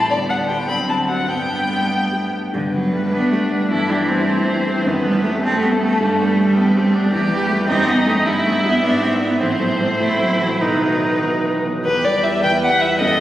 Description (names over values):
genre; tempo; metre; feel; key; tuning
quick classical-period movement for piano quartet; 94-107 BPM (dotted quarters); 6/8; rubato; G major, E minor from 7.1 s; A4 = 441 Hz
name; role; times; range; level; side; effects
dark violin; melody; 0.0-13.2 s; G4 to B5; -21 LUFS; left 2 dB; none
rich cello; second line; 0.0-13.2 s; D3 to B4; -20 LUFS; right 1 dB; none
clear viola; accompaniment; 0.0-13.2 s; A3 to B4; -22 LUFS; right 1 dB; none
warm concert grand piano; accompaniment; 0.0-13.2 s; B1 to C5; -23 LUFS; left 1 dB; none
room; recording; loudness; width
wet church reverb, RT60 3.2 s; recorded on a phone in the room, studio reverb; -15 LUFS; side -13 dB against mid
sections
0.0-2.5 A section; 2.5-11.9 A section; 11.9-13.2 B section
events
none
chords
0.1 G/D; 0.7 D7; 1.3 G; 3.7 Am7/G; 4.9 B7(no3)/F#; 6.0 G; 7.1 Em; 7.7 B7/F#; 8.3 Em/G; 8.8 E/G#; 9.4 Am; 10.0 F#dim/A; 10.6 B; 11.9 Em